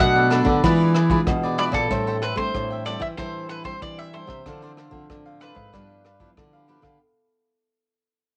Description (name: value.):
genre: samba and choro.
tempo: 94 BPM.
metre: 4/4.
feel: straight.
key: unclear.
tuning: A4 = 443 Hz.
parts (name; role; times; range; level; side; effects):
mandolin; melody; 0.0-6.6 s; A4 to F#5; -28 LUFS; equal; cassette tape.
cavaquinho; accompaniment; 0.0-7.0 s; D4 to G5; -31 LUFS; equal; cassette tape.
nylon-string guitar; accompaniment; 0.0-7.0 s; G2 to F#4; -33 LUFS; equal; cassette tape.
nylon-string guitar; bass; 0.0-7.0 s; G2 to A3; -25 LUFS; equal; none.
vintage brush drum kit; drums; 0.0-7.0 s; hi-hat, kick drum, rim click; -30 LUFS; equal; cassette tape.
room: light reverb, small room reverb.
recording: home recording on cassette.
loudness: -21 LUFS.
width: mono.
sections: 0.0-7.0 A section.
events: fade-out 0.0-7.0.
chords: 0.0 Bm7; 0.6 E7b9; 1.9 Am7; 4.5 Dm9; 5.7 G6.